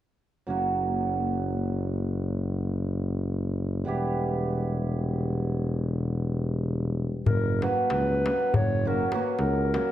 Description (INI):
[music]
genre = balkan folk, Balkan wedding band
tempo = 194 BPM (eighths)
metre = 11/8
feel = straight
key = unclear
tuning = A4 = 441 Hz
[part]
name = cimbalom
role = accompaniment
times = 0.5-9.9 s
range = F#3 to G4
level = -31 LUFS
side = right 4 dB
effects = none
[part]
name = mellow tuba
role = bass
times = 0.5-9.8 s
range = E1 to C#2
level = -28 LUFS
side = left 1 dB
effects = none
[part]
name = dark clarinet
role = melody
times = 7.3-9.9 s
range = A#4 to C#5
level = -28 LUFS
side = left 2 dB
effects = tape echo
[part]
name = darbuka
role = percussion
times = 7.3-9.9 s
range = none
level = -28 LUFS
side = left 1 dB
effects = none
[sound]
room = moderate recital hall reverb, RT60 1.4 s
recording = dark, warm production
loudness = -25 LUFS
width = side -12 dB against mid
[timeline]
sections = 0.5-7.3 A section; 7.3-9.9 B section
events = none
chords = 0.5 F#; 3.9 Em; 7.3 F#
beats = | 0.47 0.78 1.09 1.40 1.71 2.02 2.33 2.63 2.94 3.25 3.56 | 3.87 4.18 4.49 4.80 5.11 5.42 5.73 6.04 6.35 6.66 6.96 | 7.27 7.58 7.89 8.20 8.51 8.81 9.12 9.43 9.74